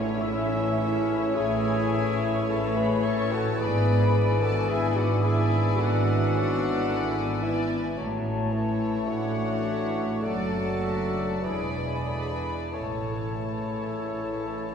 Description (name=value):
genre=classical, slow romantic movement for symphony orchestra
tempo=44-56 BPM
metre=4/4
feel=rubato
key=A major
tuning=A4 = 441 Hz
part: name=warm symphonic violin section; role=melody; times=0.0-14.7 s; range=C#5 to D5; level=-38 LUFS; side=left 6 dB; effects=none
part: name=mellow hollow flute section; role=second line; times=0.0-14.7 s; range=E5 to A5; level=-38 LUFS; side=left 4 dB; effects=none
part: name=warm oboe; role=second line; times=0.0-14.7 s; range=C#5 to E5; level=-39 LUFS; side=equal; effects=none
part: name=dark symphonic viola section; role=accompaniment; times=0.0-14.7 s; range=E3 to A4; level=-36 LUFS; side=equal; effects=none
part: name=mellow bassoon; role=accompaniment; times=0.0-14.7 s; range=C#3 to A3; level=-36 LUFS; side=left 3 dB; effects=none
part: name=mellow trombone section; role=sustained chords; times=0.0-14.7 s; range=E3 to B3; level=-36 LUFS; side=left 2 dB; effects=none
part: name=warm French horn section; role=sustained chords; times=0.0-14.7 s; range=C#4 to A4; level=-35 LUFS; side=left 2 dB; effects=none
part: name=rich symphonic cello section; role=bass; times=0.0-14.7 s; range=E2 to A2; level=-31 LUFS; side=equal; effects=none
part: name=warm studio double bass section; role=bass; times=0.0-14.7 s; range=E1 to A1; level=-30 LUFS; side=right 2 dB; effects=none
part: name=mellow clarinet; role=second line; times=0.2-14.7 s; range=E4 to C#5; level=-32 LUFS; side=left 2 dB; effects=none
part: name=warm symphonic violin section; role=second line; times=0.2-14.7 s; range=E5 to C#6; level=-38 LUFS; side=left 3 dB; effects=none
part: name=dark trumpet section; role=stabs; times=0.2-14.7 s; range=C#4 to A4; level=-34 LUFS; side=equal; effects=none
room=wet scoring stage reverb, RT60 1.9 s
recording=heard from further back in the room, faint mains hum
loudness=-24 LUFS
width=side -7 dB against mid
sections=0.0-14.7 A section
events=none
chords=0.0 A; 3.6 E7/G#; 8.0 A; 10.2 D/F#; 11.4 E7; 12.7 A